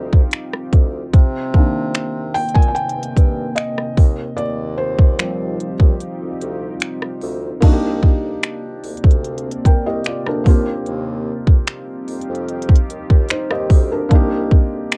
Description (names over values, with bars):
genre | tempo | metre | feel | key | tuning
contemporary R&B | 74 BPM | 4/4 | straight | C minor | A4 = 441 Hz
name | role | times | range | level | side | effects
felt-muted upright piano | accompaniment | 0.0-15.0 s | Eb3 to Ab5 | -26 LUFS | equal | none
deep dark ambient pad | sustained chords | 0.0-15.0 s | C3 to D5 | -31 LUFS | equal | chorus, built-in reverb
dark bassoon | bass | 0.0-14.8 s | C2 to C3 | -30 LUFS | equal | none
trap drum kit | drums | 0.1-15.0 s | crash cymbal, finger snaps, hi-hat, kick drum, rim click | -14 LUFS | equal | vintage 12-bit sampler grit
room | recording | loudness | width
little or no reverb | dark, warm production | -17 LUFS | mono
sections
0.0-7.6 A section; 7.6-15.0 B section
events
felt piano solo 0.0-7.6; break 6.0-7.6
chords
0.0 Eb69; 1.1 Cm9; 4.0 Eb69; 7.6 Cm9; 10.5 Eb69; 14.1 Cm9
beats
0.33 | 1.14 1.95 2.76 3.57 | 4.38 5.19 6.00 6.81 | 7.62 8.43 9.24 10.05 | 10.87 11.68 12.49 13.30 | 14.11 14.92